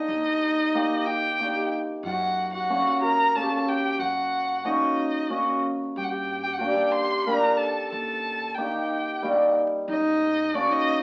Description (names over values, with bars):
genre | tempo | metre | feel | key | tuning
klezmer | 92 BPM | 3/4 | straight | unclear | A4 = 439 Hz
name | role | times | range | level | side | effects
clear violin | melody | 0.0-11.0 s | D5 to C6 | -29 LUFS | equal | none
warm clarinet | second line | 0.0-11.0 s | D4 to Bb4 | -32 LUFS | equal | none
upright bass | bass | 0.1-10.7 s | Eb2 to G2 | -43 LUFS | equal | none
cimbalom | accompaniment | 0.7-10.9 s | G3 to A4 | -28 LUFS | equal | none
room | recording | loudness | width
wet studio reverb, RT60 0.6 s | very old 78 rpm record, vinyl crackle | -25 LUFS | mono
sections
0.0-11.0 A section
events
none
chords
0.1 Eb; 2.0 F#; 6.0 Gm; 7.9 Eb; 9.9 F#